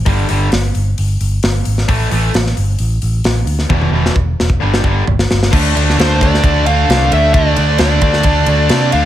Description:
hard rock; 132 BPM; 4/4; straight; A4 = 441 Hz
tight distorted guitar; riff; 0.1-9.1 s; E2 to D4; -20 LUFS; left 12 dB; distortion
tight distorted guitar; riff; 0.1-9.1 s; E2 to D4; -20 LUFS; right 10 dB; distortion
picked electric bass; bass; 0.1-9.1 s; E1 to C3; -14 LUFS; equal
tight metal drum kit; drums; 0.1-9.0 s; crash cymbal, hi-hat, kick drum, ride cymbal, snare drum, toms; -16 LUFS; equal
distorted electric guitar; riff; 5.5-9.1 s; D3 to D4; -24 LUFS; right 1 dB
dark smooth lead guitar; melody; 6.0-9.1 s; C5 to F5; -16 LUFS; equal; overdrive
studio reverb; -11 LUFS; side -12 dB against mid
0.0-5.5 A section; 5.5-9.1 B section
drum fill 3.7-5.5
0.1 G5; 1.9 A5; 3.7 E5; 4.6 G5; 5.5 D5

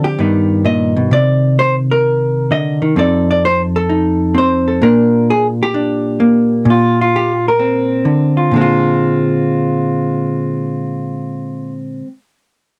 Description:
solo jazz; 130 BPM; 4/4; swing 68% on 8ths; Bb mixolydian; A4 = 443 Hz
hollow-body jazz guitar; solo; 0.0-12.1 s; F2 to D#5; -14 LUFS; equal
light reverb; dry, close 1970s-style studio recording; -14 LUFS; mono
0.0-8.5 A section; 8.5-12.2 B section
0.2 Gaug; 1.1 Cm7; 3.0 F7; 4.8 Bb69; 8.5 Bb9

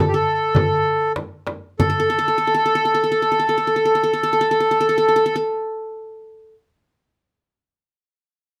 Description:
Arabic maqam ensemble; 91-106 BPM; 3/4; straight; A4 = 441 Hz
accordion; melody; 0.0-5.4 s; G4 to A4; -20 LUFS; equal
qanun; second line; 0.0-6.5 s; A4 to Bb4+50c; -25 LUFS; equal
darbuka; percussion; 0.3-2.1 s; -26 LUFS; equal
frame drum; percussion; 0.6-2.1 s; -25 LUFS; equal
light reverb; -19 LUFS; mono
0.0-1.8 A section; 1.8-5.7 B section
slowing down 0.0-1.8

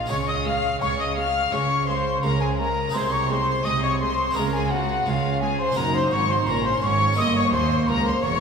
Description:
classical, baroque-style concerto movement with solo episodes; 85 BPM; 4/4; straight; A4 = 441 Hz
mellow hollow baroque flute; melody; 0.0-8.4 s; F5 to Eb6; -27 LUFS; equal
rich chamber violin section; melody; 0.0-8.4 s; F5 to F6; -28 LUFS; left 5 dB
warm chamber violin section; second line; 0.0-8.4 s; F4 to F5; -27 LUFS; left 4 dB
harpsichord; accompaniment; 0.0-8.4 s; Db2 to Ab4; -32 LUFS; right 1 dB
dark chamber viola section; accompaniment; 0.1-8.4 s; Ab3 to Eb4; -30 LUFS; right 2 dB
warm chamber cello section; bass; 0.1-8.4 s; Db2 to Db3; -29 LUFS; right 4 dB
warm chamber double bass section; bass; 0.1-8.4 s; E1 to Eb2; -28 LUFS; right 2 dB
wet church reverb, RT60 3.2 s; recorded in a church or concert hall; -20 LUFS; side -6 dB against mid
0.0-8.4 A section
0.1 Db; 2.9 Ab/C; 4.4 Db5; 5.8 Gb; 7.2 Gdim7

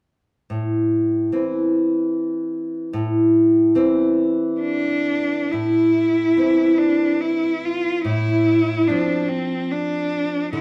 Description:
romantic duo for cello and classical guitar; 72 BPM; 3/4; uneven beats, rubato; A minor; A4 = 441 Hz
nylon-string guitar; accompaniment; 0.5-10.6 s; A2 to C4; -21 LUFS; equal
rich cello; melody; 4.6-10.6 s; C4 to F4; -24 LUFS; equal
wet large studio reverb, RT60 1.0 s; band playing live in one room; -20 LUFS; mono
0.5-5.5 A section; 5.5-10.6 B section
0.5 Am; 8.0 Dm7/A

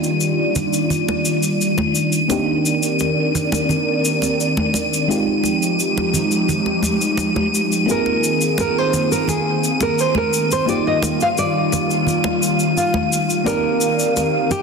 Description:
sunset chillout; 86 BPM; 4/4; straight; Eb major; A4 = 439 Hz
mellow FM electric piano; accompaniment; 0.0-14.6 s; Ab3 to D5; -23 LUFS; equal; chorus, auto-pan, low-pass filter, ping-pong delay
airy breathy pad; sustained chords; 0.0-14.6 s; Eb3 to F5; -21 LUFS; equal; chorus
cabasa; drums; 0.0-14.6 s; -26 LUFS; left 3 dB
wind-like tuned noise texture; texture; 0.0-14.6 s; Eb7; -24 LUFS; left 1 dB; built-in reverb
congas; percussion; 0.6-14.6 s; -25 LUFS; right 1 dB
nylon-string guitar; melody; 7.9-14.6 s; F4 to F5; -20 LUFS; right 2 dB; digital delay
wet plate reverb, RT60 2.3 s; dense, heavily limited modern master; -16 LUFS; side -5 dB against mid
0.0-14.6 A section
filter sweep on FM electric piano 0.0-14.6; filter sweep on analog synth pad 0.0-14.6
0.0 Ebmaj9; 2.3 Cm9; 5.1 Fm9; 7.9 Bb9sus4; 10.7 Ebmaj9; 13.5 Cm9

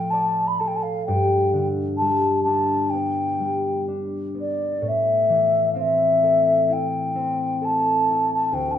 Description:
celtic folk; 65 BPM; 4/4; rubato; A minor; A4 = 440 Hz
mellow hollow baroque flute; melody; 0.0-8.8 s; D5 to B5; -20 LUFS; left 1 dB
concert harp; accompaniment; 0.0-8.8 s; D2 to D5; -25 LUFS; left 1 dB
light reverb; minimal, uncompressed stereo recording; -19 LUFS; side -10 dB against mid
0.0-8.8 A section
0.0 Dm/A; 1.1 G; 4.8 Am

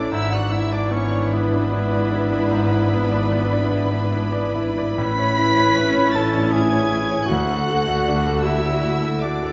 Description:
classical; 45-53 BPM (dotted quarters); 12/8; rubato; A4 = 440 Hz
clear concert grand piano; melody; 0.0-9.5 s; D2 to D5; -24 LUFS; equal
rich chamber violin section; melody; 0.0-9.5 s; B5 to B6; -32 LUFS; equal
clear symphonic violin section; second line; 0.0-9.5 s; B4 to B5; -35 LUFS; equal
concert flute; second line; 0.0-9.5 s; B4 to B5; -30 LUFS; equal
mellow cor anglais; second line; 0.0-9.5 s; B3 to B4; -31 LUFS; equal
rich symphonic viola section; accompaniment; 0.0-9.5 s; A3 to F#4; -30 LUFS; equal
dark French horn section; sustained chords; 0.0-9.5 s; E3 to D4; -32 LUFS; equal
rich studio cello section; bass; 0.0-9.5 s; D2 to A2; -30 LUFS; equal
warm symphonic double bass section; bass; 0.0-9.5 s; G#1 to D2; -29 LUFS; equal
moderate scoring stage reverb, RT60 1.8 s; nothing above 7.6 kHz; -20 LUFS; mono
0.0-9.5 A section
0.1 E7/G#; 5.0 A; 7.3 D

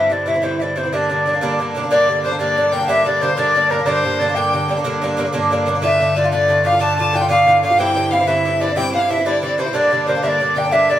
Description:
celtic folk; 122 BPM (dotted quarters); 12/8; straight; G dorian; A4 = 440 Hz
bright wooden flute; melody; 0.0-11.0 s; Bb4 to A5; -17 LUFS; equal
Irish bouzouki; accompaniment; 0.0-11.0 s; G2 to F4; -19 LUFS; right 1 dB
dark studio string section; drone; 0.0-11.0 s; G2 to D3; -27 LUFS; left 1 dB
clear fiddle; second line; 1.9-11.0 s; Bb4 to A5; -22 LUFS; left 3 dB
wet studio reverb, RT60 0.6 s; band playing live in one room; -14 LUFS; side -12 dB against mid
0.0-1.9 A section; 1.9-11.0 A section
0.0 C; 0.9 Gm; 5.8 Dm; 7.8 C; 9.7 Gm

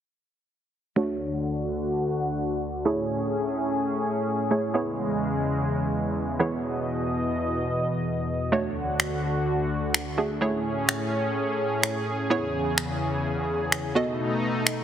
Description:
dance-pop; 127 BPM; 4/4; straight; A4 = 440 Hz
analog pluck; accompaniment; 1.0-14.8 s; E3 to D#5; -27 LUFS; right 2 dB; chorus, low-pass filter
lush unison pad; sustained chords; 1.0-14.8 s; D2 to D#5; -26 LUFS; equal; chorus, low-pass filter
electronic finger snaps; drums; 9.0-14.8 s; -25 LUFS; equal
moderate lush hall reverb, RT60 1.9 s; heavily compressed radio sound, multiband compression; -24 LUFS; side -9 dB against mid
1.0-14.8 A section
filter sweep 1.0-14.8
1.0 Dmaj7; 2.9 Amaj7; 4.7 E6; 6.4 C#m7/E; 8.5 Dmaj7; 10.4 Amaj7; 12.3 E6; 14.0 B7

